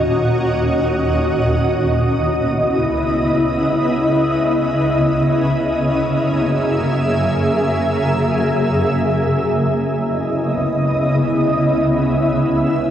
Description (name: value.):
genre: hip hop.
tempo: free time.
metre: none.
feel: none.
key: C# dorian.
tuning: A4 = 439 Hz.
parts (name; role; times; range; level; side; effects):
shimmering ambient pad; solo; 0.0-12.9 s; C#2 to E5; -15 LUFS; equal; chorus, built-in reverb, cassette tape.
room: light reverb, digital ambience.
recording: home recording on cassette.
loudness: -15 LUFS.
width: side -10 dB against mid.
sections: 0.0-9.7 A section; 9.7-12.9 B section.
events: none.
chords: 0.0 D#m7; 2.0 C#m7; 5.8 F#7; 9.7 C#m7.